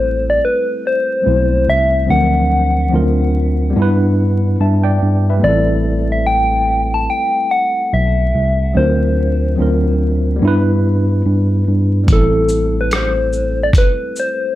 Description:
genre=lo-fi hip hop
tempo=72 BPM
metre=4/4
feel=swing 64% on 16ths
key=A dorian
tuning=A4 = 440 Hz
part: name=soft struck synth lead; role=melody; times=0.0-14.6 s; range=A4 to A5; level=-17 LUFS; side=left 1 dB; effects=chorus, low-pass filter
part: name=tine electric piano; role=accompaniment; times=0.0-14.6 s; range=E#3 to A5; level=-20 LUFS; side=equal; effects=overdrive, fast stereo tremolo, low-pass filter
part: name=mellow tine electric piano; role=bass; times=0.0-13.7 s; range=A1 to G2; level=-15 LUFS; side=equal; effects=medium stereo tremolo
part: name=dusty soul sampler-style drum kit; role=drums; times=12.1-14.4 s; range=hi-hat, kick drum, rim click, shaker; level=-14 LUFS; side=equal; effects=none
room=moderate studio reverb, RT60 0.6 s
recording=vinyl crackle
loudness=-12 LUFS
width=side -14 dB against mid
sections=0.0-14.6 A section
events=none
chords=0.0 Am7; 2.1 D7alt; 3.8 G6; 5.4 Am7; 8.8 D7alt; 10.4 G6; 12.1 Am7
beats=0.42 1.25 | 2.08 2.92 3.75 4.58 | 5.42 6.25 7.08 7.92 | 8.75 9.58 10.42 11.25 | 12.08 12.92 13.75

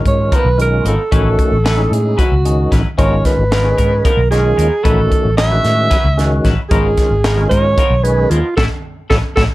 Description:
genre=electric jazz fusion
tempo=226 BPM (eighths)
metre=7/8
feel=straight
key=G# dorian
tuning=A4 = 439 Hz
part: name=percussive tonewheel organ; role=accompaniment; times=0.0-9.4 s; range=D#3 to G#4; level=-20 LUFS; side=left 1 dB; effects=slow rotary speaker, overdrive, chorus vibrato
part: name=dark alto saxophone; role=melody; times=0.1-9.4 s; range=E#4 to E5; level=-16 LUFS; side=right 2 dB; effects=slapback echo
part: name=fretless electric bass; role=bass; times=0.1-9.5 s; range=G#1 to A2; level=-15 LUFS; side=equal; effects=none
part: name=crisp fusion drum kit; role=drums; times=0.1-9.5 s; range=hi-hat, kick drum, snare drum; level=-17 LUFS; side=equal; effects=none
part: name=twangy electric guitar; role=stabs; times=0.3-9.4 s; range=E#3 to B4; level=-25 LUFS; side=left 4 dB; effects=lush chorus
room=little or no reverb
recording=dark, warm production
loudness=-11 LUFS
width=side -17 dB against mid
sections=0.0-9.5 A section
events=drum fill 8.6-9.5; band accent 8.6-9.5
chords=0.0 G#m69; 1.1 A69; 3.0 G#m69; 4.8 A69; 6.7 G#m69; 8.6 A6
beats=0.05 0.32 0.58 0.85 | 1.11 1.38 1.65 1.91 2.18 2.44 2.71 | 2.98 3.24 3.51 3.77 4.04 4.31 4.57 | 4.84 5.11 5.37 5.64 5.90 6.17 6.43 | 6.70 6.97 7.23 7.50 7.76 8.03 8.30 | 8.56 8.83 9.09 9.36

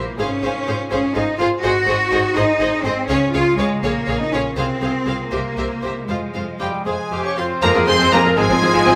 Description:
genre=classical, dramatic, fast romantic movement for symphony orchestra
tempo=81 BPM (dotted quarters)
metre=6/8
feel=rubato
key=F minor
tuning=A4 = 440 Hz
part: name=clear symphonic violin section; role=melody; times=0.0-9.0 s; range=Eb5 to Db6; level=-28 LUFS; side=equal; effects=none
part: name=clear symphonic violin section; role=second line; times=0.0-8.9 s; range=Ab3 to Db5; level=-29 LUFS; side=equal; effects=none
part: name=rich symphonic viola section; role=accompaniment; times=0.0-8.9 s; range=F3 to Ab4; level=-29 LUFS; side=equal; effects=none
part: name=concert harp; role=arpeggios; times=0.0-9.0 s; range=Ab2 to F5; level=-30 LUFS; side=equal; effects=none
part: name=rich symphonic cello section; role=bass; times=0.0-9.0 s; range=Ab3 to Ab4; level=-22 LUFS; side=equal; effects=none
part: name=rich symphonic double bass section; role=bass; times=0.0-8.9 s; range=Ab1 to F2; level=-30 LUFS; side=equal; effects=none
part: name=clear clarinet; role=second line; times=6.6-9.0 s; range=G4 to Db5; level=-26 LUFS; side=equal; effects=none
part: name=mellow cor anglais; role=second line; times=6.6-9.0 s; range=G3 to Db4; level=-26 LUFS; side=equal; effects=none
part: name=silver concert flute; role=second line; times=6.6-9.0 s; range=G5 to Db6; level=-29 LUFS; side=equal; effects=none
part: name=warm trumpet section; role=stabs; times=6.6-9.0 s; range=G4 to Db5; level=-26 LUFS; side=equal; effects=none
part: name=bright trombone section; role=sustained chords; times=7.6-9.0 s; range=F3 to Ab3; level=-26 LUFS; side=equal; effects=none
part: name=mellow French horn section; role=sustained chords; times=7.6-9.0 s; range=C4 to F4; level=-28 LUFS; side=equal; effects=none
part: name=warm tuba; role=bass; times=7.6-8.9 s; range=F1 to Ab1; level=-30 LUFS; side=equal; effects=none
room=wet stone room reverb, RT60 1.1 s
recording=none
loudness=-19 LUFS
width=mono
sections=0.0-7.6 A section; 7.6-9.0 A section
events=none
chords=0.2 Fm/Ab; 1.6 Ab7; 3.1 Db; 3.8 Bbm7; 4.6 Fm/C; 5.3 C7; 6.1 Fm; 8.4 Fm/Ab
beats=| 0.20 0.92 | 1.64 2.37 | 3.10 3.84 | 4.57 5.32 | 6.08 6.86 | 7.62 8.37

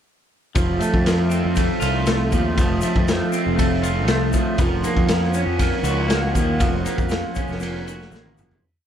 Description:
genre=psychedelic rock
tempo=119 BPM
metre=4/4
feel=straight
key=F phrygian dominant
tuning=A4 = 441 Hz
part: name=pipe organ, foundations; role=sustained chords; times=0.6-8.6 s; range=F3 to Gb5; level=-32 LUFS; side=right 8 dB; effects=none
part: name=electric guitar at the edge of break-up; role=riff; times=0.6-8.6 s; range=F3 to Gb4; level=-22 LUFS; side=right 1 dB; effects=phaser, double-tracked left and right
part: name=fuzz picked electric bass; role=bass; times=0.6-8.6 s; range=F1 to F2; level=-23 LUFS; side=equal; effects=overdrive
part: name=raw garage drum kit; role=drums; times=0.6-8.6 s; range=kick drum, ride cymbal, snare drum, toms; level=-22 LUFS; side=equal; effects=none
part: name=egg shaker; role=percussion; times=0.6-8.6 s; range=none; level=-39 LUFS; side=left 14 dB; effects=none
room=little or no reverb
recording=none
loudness=-18 LUFS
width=side -9 dB against mid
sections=0.6-8.6 groove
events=fade-out 6.6-8.6; drum fill 8.1-8.6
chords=0.6 F; 4.6 Gb/F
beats=| 0.56 1.07 1.57 2.08 | 2.58 3.08 3.59 4.09 | 4.59 5.10 5.60 6.10 | 6.61 7.11 7.62 8.12

